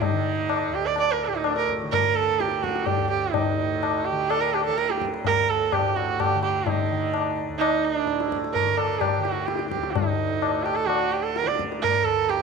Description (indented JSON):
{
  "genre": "indian classical, Hindustani",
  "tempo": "127 BPM",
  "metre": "7/4",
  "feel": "straight",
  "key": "unclear",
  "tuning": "A4 = 441 Hz",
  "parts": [
    { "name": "rich sarangi", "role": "melody", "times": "0.0-12.4 s", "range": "D4 to D5", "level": "-23 LUFS", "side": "right 9 dB", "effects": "none" },
    { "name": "tanpura", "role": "drone", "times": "0.0-12.4 s", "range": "D2 to D3", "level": "-34 LUFS", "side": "left 1 dB", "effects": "none" },
    { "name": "tabla", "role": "percussion", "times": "0.0-12.4 s", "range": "none", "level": "-27 LUFS", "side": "left 10 dB", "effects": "none" }
  ],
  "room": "moderate plate reverb, RT60 3.0 s",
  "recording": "1960s-style stereo with parts hard left and right",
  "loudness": "-21 LUFS",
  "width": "side -5 dB against mid",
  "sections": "0.0-12.4 A section",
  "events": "none",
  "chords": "none"
}